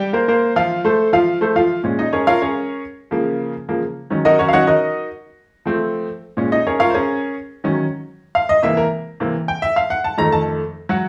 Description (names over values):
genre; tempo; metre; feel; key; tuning
latin; 212 BPM; 4/4; straight; Bb minor; A4 = 440 Hz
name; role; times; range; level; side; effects
bright upright piano; solo; 0.0-11.1 s; F2 to Bb5; -18 LUFS; equal; none
room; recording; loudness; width
moderate studio reverb, RT60 0.7 s; small room reverb; -18 LUFS; mono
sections
0.0-1.8 A section; 1.8-10.9 B section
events
upright piano solo 1.8-10.9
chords
0.0 C5; 0.7 F; 1.8 Bbm7; 3.0 Db6; 4.1 Ebm7; 5.2 F; 6.4 Bbm7; 7.5 Ebm7; 8.6 C7; 9.8 F7